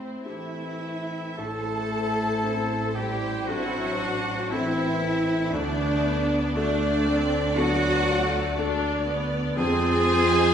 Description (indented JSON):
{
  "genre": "cinematic, emotional film score for orchestra",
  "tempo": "59 BPM",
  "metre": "4/4",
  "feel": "rubato",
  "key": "A dorian",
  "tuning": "A4 = 438 Hz",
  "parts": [
    { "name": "rich studio violin section", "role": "second line", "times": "0.0-10.5 s", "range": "E4 to A5", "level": "-33 LUFS", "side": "left 2 dB", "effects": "none" },
    { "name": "clear symphonic viola section", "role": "accompaniment", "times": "0.0-10.5 s", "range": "A3 to E4", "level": "-32 LUFS", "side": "right 1 dB", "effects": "none" },
    { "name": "felt-muted upright piano", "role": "accompaniment", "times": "0.0-10.5 s", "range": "D2 to A5", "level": "-32 LUFS", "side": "left 3 dB", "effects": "none" },
    { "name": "clear studio cello section", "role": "bass", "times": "0.0-10.5 s", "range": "A2 to A4", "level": "-29 LUFS", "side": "right 2 dB", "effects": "none" },
    { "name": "clear clarinet", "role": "second line", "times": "0.3-10.5 s", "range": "A3 to F4", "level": "-31 LUFS", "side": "right 1 dB", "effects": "none" },
    { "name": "clear oboe", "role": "second line", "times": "0.3-10.5 s", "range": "D4 to A4", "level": "-32 LUFS", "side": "equal", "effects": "none" },
    { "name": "dark French horn section", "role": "sustained chords", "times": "0.3-10.5 s", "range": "D3 to A3", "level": "-31 LUFS", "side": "left 1 dB", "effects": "none" },
    { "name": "warm studio violin section", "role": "melody", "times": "1.4-10.5 s", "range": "C5 to D5", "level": "-33 LUFS", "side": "left 2 dB", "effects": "none" },
    { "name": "rich studio double bass section", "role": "bass", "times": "1.4-10.5 s", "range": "A1 to F2", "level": "-31 LUFS", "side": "right 2 dB", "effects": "none" }
  ],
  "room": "wet recital hall reverb, RT60 1.4 s",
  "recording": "recorded in a church or concert hall, nothing above 10.9 kHz",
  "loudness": "-22 LUFS",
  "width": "side -8 dB against mid",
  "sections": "0.0-1.4 A section; 1.4-10.5 A section",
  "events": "none",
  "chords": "0.0 Am7; 1.4 Am; 5.5 D; 9.6 Fm"
}